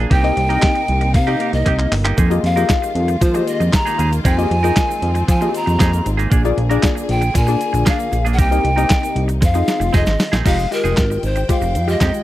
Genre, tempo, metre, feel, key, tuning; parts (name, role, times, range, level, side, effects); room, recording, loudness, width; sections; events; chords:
early-eighties boogie funk; 116 BPM; 4/4; straight; F dorian; A4 = 440 Hz
warm studio string section; sustained chords; 0.0-12.2 s; C3 to G5; -28 LUFS; left 1 dB
semi-hollow electric guitar; riff; 0.0-12.2 s; Ab3 to Bb4; -25 LUFS; right 6 dB; analog chorus
fat analog bass; bass; 0.0-12.1 s; F1 to F3; -18 LUFS; equal
breathy bright pan flute; melody; 0.1-12.2 s; Bb4 to Bb5; -21 LUFS; left 1 dB; slapback echo
crisp 8-bit digital drum machine; drums; 0.1-12.2 s; crash cymbal, handclaps, hi-hat, kick drum, snare drum; -17 LUFS; equal
funky polysynth comp; accompaniment; 0.2-12.2 s; Ab3 to F5; -23 LUFS; left 4 dB; chorus
egg shaker; percussion; 2.2-12.2 s; -37 LUFS; right 12 dB
little or no reverb; dry, close 1970s-style studio recording; -14 LUFS; side -15 dB against mid
0.0-10.5 A section; 10.5-12.2 B section
drum fill 1.7-2.2, 9.4-10.5; pan flute solo 10.5-12.2
0.1 Cm7; 2.2 Fm11; 6.3 Bb7; 8.4 Cm7; 9.4 Fm7; 10.5 Fm9